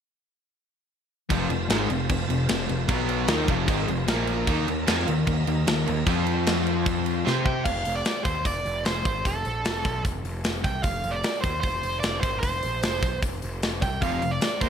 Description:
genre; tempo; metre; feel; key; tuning
hard rock; 151 BPM; 4/4; straight; F mixolydian; A4 = 437 Hz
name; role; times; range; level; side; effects
overdriven tonewheel organ; sustained chords; 1.3-7.7 s; Eb4 to C6; -36 LUFS; equal; slow rotary speaker, chorus vibrato
crunchy overdriven guitar; riff; 1.3-7.7, 14.0-14.7 s; F2 to C5; -28 LUFS; left 12 dB; none
overdriven semi-hollow guitar; riff; 1.3-7.7, 14.0-14.7 s; F2 to C5; -29 LUFS; right 11 dB; lush chorus
fuzz picked electric bass; bass; 1.3-14.7 s; F1 to C3; -30 LUFS; equal; overdrive
tight metal drum kit; drums; 1.3-14.7 s; crash cymbal, hi-hat, kick drum, snare drum; -27 LUFS; equal; gated reverb
high-gain lead guitar; melody; 7.5-14.7 s; A4 to G5; -28 LUFS; right 2 dB; distortion, ping-pong delay
room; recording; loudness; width
light reverb, small room ambience; bright 1980s-style digital production; -23 LUFS; side -8 dB against mid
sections
1.3-7.7 A section; 7.7-14.7 B section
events
drum fill 7.3-7.7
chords
1.3 F; 2.9 B5; 3.3 F; 4.1 Bb5; 4.5 Eb5; 6.1 F5; 7.3 C5; 7.7 F5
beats
| 1.30 1.70 2.09 2.49 | 2.89 3.29 3.68 4.08 | 4.48 4.88 5.27 5.67 | 6.07 6.47 6.86 7.26 | 7.66 8.06 8.46 8.85 | 9.25 9.65 10.05 10.45 | 10.84 11.24 11.64 12.04 | 12.44 12.83 13.23 13.63 | 14.03 14.42

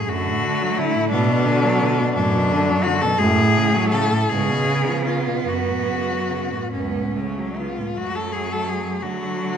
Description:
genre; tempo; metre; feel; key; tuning
classical, lyrical piece for cello ensemble; 47-60 BPM (dotted quarters); 6/8; rubato; F# minor; A4 = 438 Hz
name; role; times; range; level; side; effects
rich cello; melody; 0.0-9.6 s; C#4 to A4; -22 LUFS; left 4 dB; none
rich cello; second line; 0.0-9.6 s; A3 to B3; -28 LUFS; right 7 dB; none
clear cello; accompaniment; 0.0-9.6 s; F#2 to F#3; -25 LUFS; equal; none
rich cello; bass; 0.1-9.6 s; C#2 to D3; -24 LUFS; right 2 dB; none
room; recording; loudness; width
wet scoring stage reverb, RT60 1.6 s; none; -18 LUFS; side -8 dB against mid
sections
0.0-8.0 A section; 8.0-9.6 B section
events
none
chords
0.1 D/F#; 1.1 Bm7/A; 3.2 F#m; 4.3 C#7/G#; 5.5 F#m; 9.0 D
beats
0.09 | 1.11 2.16 | 3.20 4.29 | 5.48 6.74 | 7.97 9.03

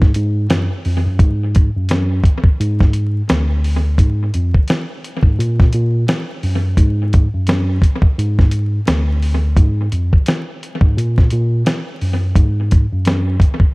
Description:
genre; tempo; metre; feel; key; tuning
lo-fi hip hop; 86 BPM; 4/4; swing 60% on 16ths; unclear; A4 = 440 Hz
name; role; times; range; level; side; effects
mellow tine electric piano; bass; 0.0-13.4 s; D2 to A#2; -16 LUFS; equal; medium stereo tremolo
dusty soul sampler-style drum kit; drums; 0.0-13.7 s; hi-hat, kick drum, snare drum; -14 LUFS; equal; analog delay
room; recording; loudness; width
little or no reverb; echo-heavy mix, vinyl crackle; -13 LUFS; side -26 dB against mid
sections
0.0-1.2 A section; 1.2-13.7 B section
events
none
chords
none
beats
0.49 | 1.19 1.89 2.59 3.28 | 3.98 4.68 5.38 6.08 | 6.77 7.47 8.17 8.87 | 9.56 10.26 10.96 11.66 | 12.35 13.05

